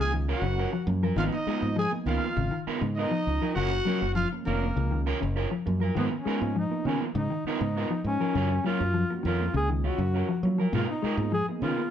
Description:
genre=afrobeat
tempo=100 BPM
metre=4/4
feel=straight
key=G# dorian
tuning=A4 = 440 Hz
part: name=warm duduk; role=melody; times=0.0-11.9 s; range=A#3 to G#4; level=-31 LUFS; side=left 1 dB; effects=none
part: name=growling trumpet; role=second line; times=0.0-5.0 s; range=A#4 to G#5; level=-34 LUFS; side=right 4 dB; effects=none
part: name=mellow reed electric piano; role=accompaniment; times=0.0-11.9 s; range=E#3 to G#4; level=-37 LUFS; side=right 5 dB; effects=fast tremolo
part: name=mellow electric guitar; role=arpeggios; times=0.0-11.9 s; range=B2 to G#3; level=-32 LUFS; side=left 6 dB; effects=none
part: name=electric guitar at the edge of break-up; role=stabs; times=0.0-11.8 s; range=B3 to A#4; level=-33 LUFS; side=right 4 dB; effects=none
part: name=fingered electric bass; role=bass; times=0.0-11.7 s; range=E#1 to F#3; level=-28 LUFS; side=right 1 dB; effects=none
room=moderate studio reverb, RT60 0.7 s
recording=band playing live in one room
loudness=-25 LUFS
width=side -9 dB against mid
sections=0.0-6.0 A section; 6.0-11.9 A section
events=none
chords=0.0 F#maj7; 1.2 G#m69; 3.6 F#maj7; 6.0 G#m69; 8.3 F#maj7; 10.7 G#m69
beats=0.57 | 1.17 1.77 2.37 2.96 | 3.56 4.16 4.76 5.36 | 5.96 6.55 7.15 7.75 | 8.34 8.94 9.54 10.13 | 10.73 11.32

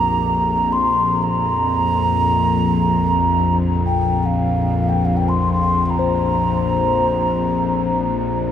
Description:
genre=world meditative, free-time meditation music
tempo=free time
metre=none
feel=none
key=unclear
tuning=A4 = 440 Hz
part: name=mellow hollow alto ocarina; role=melody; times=0.0-8.4 s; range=F5 to C6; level=-19 LUFS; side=right 2 dB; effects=diffuse ambient delay
part: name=bowed-like drone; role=drone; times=0.0-8.5 s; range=Bb1 to F2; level=-18 LUFS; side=left 2 dB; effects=built-in reverb
part: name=bronze singing bowl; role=texture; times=6.0-8.5 s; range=C5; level=-27 LUFS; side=left 6 dB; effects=none
room=wet huge ambient reverb, RT60 6.5 s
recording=dark, warm production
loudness=-16 LUFS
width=side -9 dB against mid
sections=0.0-8.5 A section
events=none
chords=none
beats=free time

